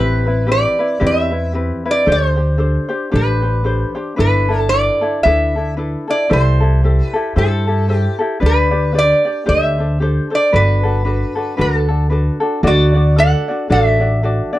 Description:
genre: Hawaiian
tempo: 114 BPM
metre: 4/4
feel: swing 59% on 8ths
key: G major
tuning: A4 = 441 Hz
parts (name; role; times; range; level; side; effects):
- lap resonator guitar; melody; 0.0-14.6 s; F#4 to F#5; -17 LUFS; right 1 dB; none
- ukulele; accompaniment; 0.0-14.6 s; C4 to D5; -20 LUFS; left 2 dB; none
- upright bass; bass; 0.0-14.4 s; G1 to G2; -16 LUFS; equal; none
room: light reverb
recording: dry, close 1970s-style studio recording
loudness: -13 LUFS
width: side -15 dB against mid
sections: 0.0-12.6 A section; 12.6-14.6 B section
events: none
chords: 0.0 Am9; 2.1 D7sus4; 4.2 G69; 6.3 C6; 8.4 G/D; 9.5 D7sus4; 10.5 Gmaj9; 12.6 D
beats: 0.49 1.02 1.55 | 2.08 2.61 3.14 3.67 | 4.20 4.73 5.25 5.78 | 6.31 6.84 7.37 7.90 | 8.43 8.96 9.48 10.01 | 10.54 11.07 11.59 12.12 | 12.65 13.18 13.70 14.23

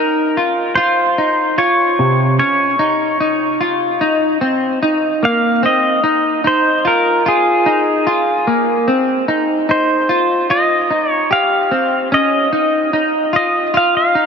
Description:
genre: dream pop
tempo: 74 BPM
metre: 4/4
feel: straight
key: unclear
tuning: A4 = 440 Hz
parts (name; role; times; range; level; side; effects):
- pedal steel guitar; melody; 0.0-14.3 s; Ab4 to F5; -16 LUFS; equal; tape echo
- semi-hollow electric guitar; arpeggios; 0.0-14.3 s; C3 to G4; -15 LUFS; left 1 dB; lush chorus, tape echo
room: wet huge ambient reverb, RT60 7.4 s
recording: dark, warm production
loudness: -12 LUFS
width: side -6 dB against mid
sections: 0.0-14.3 A section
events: none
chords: 0.0 Eb5; 0.8 Dbmaj9; 4.0 Bbsus24; 10.5 Eb; 13.7 Cmadd11 (rootless)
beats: | 0.77 1.58 2.39 3.21 | 4.01 4.83 5.64 6.45 | 7.26 8.07 8.88 9.69 | 10.50 11.31 12.12 12.93 | 13.74

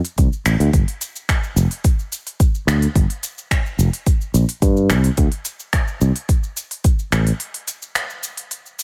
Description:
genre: organic downtempo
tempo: 108 BPM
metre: 4/4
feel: straight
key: G minor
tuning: A4 = 440 Hz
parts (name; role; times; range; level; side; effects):
- afro-pop drum kit; drums; 0.0-8.8 s; cabasa, finger snaps, hi-hat; -26 LUFS; equal; none
- fretless electric bass; bass; 0.2-7.3 s; F1 to G2; -18 LUFS; equal; none
- electronic kick drum; drums; 0.2-7.0 s; none; -19 LUFS; equal; none
room: little or no reverb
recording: none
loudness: -19 LUFS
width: mono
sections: 0.0-8.8 A section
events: break 7.4-8.8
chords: none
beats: 0.18 | 0.73 1.29 1.84 2.40 | 2.96 3.51 4.07 4.62 | 5.18 5.73 6.29 6.84 | 7.40 7.96 8.51

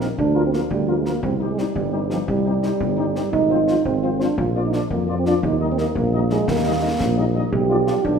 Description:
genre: military-style march for wind band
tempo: 114 BPM (dotted quarters)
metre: 6/8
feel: straight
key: Eb major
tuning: A4 = 444 Hz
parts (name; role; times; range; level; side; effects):
- dark trumpet section; melody; 0.0-7.9 s; G4 to Eb5; -35 LUFS; left 1 dB; none
- warm euphonium; second line; 0.0-8.2 s; F3 to G4; -22 LUFS; right 3 dB; none
- warm French horn section; accompaniment; 0.0-7.9 s; F3 to F4; -27 LUFS; left 5 dB; none
- mellow tuba; bass; 0.0-8.2 s; G1 to F2; -22 LUFS; right 1 dB; none
- concert snare drum and concert bass drum; drums; 0.0-8.2 s; none; -29 LUFS; left 2 dB; none
room: wet scoring stage reverb, RT60 1.8 s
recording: minimal, uncompressed stereo recording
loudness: -18 LUFS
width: side -6 dB against mid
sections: 0.0-8.2 A section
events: none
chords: 0.2 Bb/D; 1.2 Cm; 3.3 Fm7/Ab; 4.4 Bb; 5.4 Eb; 7.5 G7/B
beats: | 0.18 0.71 | 1.23 1.76 | 2.28 2.81 | 3.33 3.86 | 4.38 4.91 | 5.43 5.96 | 6.48 7.00 | 7.53 8.05

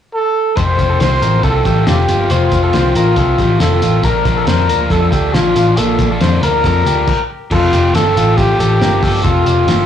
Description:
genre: jangly indie pop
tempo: 138 BPM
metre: 4/4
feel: straight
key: unclear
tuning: A4 = 440 Hz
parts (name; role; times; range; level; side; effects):
- breathy trumpet; melody; 0.1-9.9 s; F4 to C5; -16 LUFS; equal; plate reverb
- biting overdriven guitar; accompaniment; 0.6-9.9 s; F2 to F4; -20 LUFS; right 3 dB; none
- direct-recorded clean electric guitar; arpeggios; 0.6-9.9 s; Bb3 to C5; -21 LUFS; left 5 dB; digital delay
- vintage muted picked electric bass; bass; 0.6-9.9 s; F1 to F2; -15 LUFS; left 1 dB; none
- cloth-damped thuddy drum kit; drums; 0.6-9.8 s; crash cymbal, hi-hat, kick drum, snare drum; -19 LUFS; equal; none
room: moderate studio reverb, RT60 0.6 s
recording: blown-out, overdriven recording, overdrive, small room ambience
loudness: -11 LUFS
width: side -9 dB against mid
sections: 0.6-7.5 A section; 7.5-9.9 B section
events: stop 7.1-7.5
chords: 0.0 N.C.; 0.6 F7; 4.0 Bbmaj7; 7.5 F7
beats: 0.14 | 0.57 1.00 1.44 1.87 | 2.31 2.74 3.17 3.61 | 4.04 4.47 4.91 5.34 | 5.78 6.21 6.64 7.08 | 7.51 7.94 8.38 8.81 | 9.24 9.68

